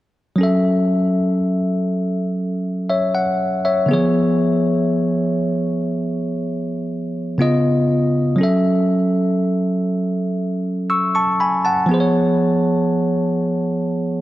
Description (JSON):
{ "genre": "R&B", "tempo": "60 BPM", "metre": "4/4", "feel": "straight", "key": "F# minor", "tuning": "A4 = 440 Hz", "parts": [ { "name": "bell-like tine electric piano", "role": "solo", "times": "0.4-14.2 s", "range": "C#3 to E6", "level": "-16 LUFS", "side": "equal", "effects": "none" } ], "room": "light reverb", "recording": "none", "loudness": "-16 LUFS", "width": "side -15 dB against mid", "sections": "0.4-8.4 A section; 8.4-14.2 B section", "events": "none", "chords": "0.4 F#m7; 3.9 C#7/E#; 7.4 C#9; 8.4 F#m7; 11.9 C#7/E#" }